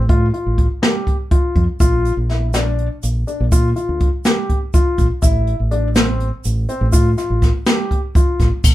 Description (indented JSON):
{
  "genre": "progressive instrumental, band music in an uneven meter",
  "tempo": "246 BPM (eighths)",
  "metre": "7/8",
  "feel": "straight",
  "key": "F major",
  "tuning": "A4 = 440 Hz",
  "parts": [
    { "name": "fingered electric bass", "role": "bass", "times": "0.0-8.7 s", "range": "A1 to Bb2", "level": "-18 LUFS", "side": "equal", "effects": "none" },
    { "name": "dark baby grand piano", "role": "arpeggios", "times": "0.1-8.5 s", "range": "C4 to G4", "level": "-22 LUFS", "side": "left 3 dB", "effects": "none" },
    { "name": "jazz brush drum kit", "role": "drums", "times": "0.1-8.7 s", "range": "crash cymbal, hi-hat, kick drum, snare drum", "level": "-15 LUFS", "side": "equal", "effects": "none" },
    { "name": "tube shaker", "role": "percussion", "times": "1.8-8.7 s", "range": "none", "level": "-31 LUFS", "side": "right 6 dB", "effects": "none" }
  ],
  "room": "light reverb",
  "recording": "band playing live in one room",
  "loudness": "-14 LUFS",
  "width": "side -15 dB against mid",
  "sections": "0.0-8.6 A section",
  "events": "none",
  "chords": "0.0 Fadd9/A; 1.8 Bb; 5.2 F/A"
}